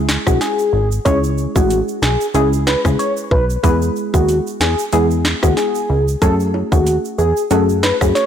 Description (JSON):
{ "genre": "dancehall", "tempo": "93 BPM", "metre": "4/4", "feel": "swing 56% on 16ths", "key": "C# minor", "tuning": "A4 = 441 Hz", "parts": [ { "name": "plucky analog bass", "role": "bass", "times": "0.0-8.1 s", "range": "G#1 to F#2", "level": "-18 LUFS", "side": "equal", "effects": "none" }, { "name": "island pop drum kit", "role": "drums", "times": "0.1-8.3 s", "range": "hi-hat, kick drum, rim click, snare drum", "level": "-18 LUFS", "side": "equal", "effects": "none" }, { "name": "tube shaker and timbales", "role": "percussion", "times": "0.1-8.3 s", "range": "none", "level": "-31 LUFS", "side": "right 9 dB", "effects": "none" }, { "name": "soft struck synth lead", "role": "melody", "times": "0.3-8.3 s", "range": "F#4 to C#5", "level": "-18 LUFS", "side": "equal", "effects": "chorus, ping-pong delay" }, { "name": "soft round pluck", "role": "accompaniment", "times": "0.3-8.2 s", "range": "G#3 to G#4", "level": "-20 LUFS", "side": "left 2 dB", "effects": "chorus" } ], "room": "light reverb", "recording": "blown-out, overdriven recording, overdrive", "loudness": "-14 LUFS", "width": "side -9 dB against mid", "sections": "0.0-8.3 A section", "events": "none", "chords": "0.0 C#m; 3.6 E; 6.2 F#madd9" }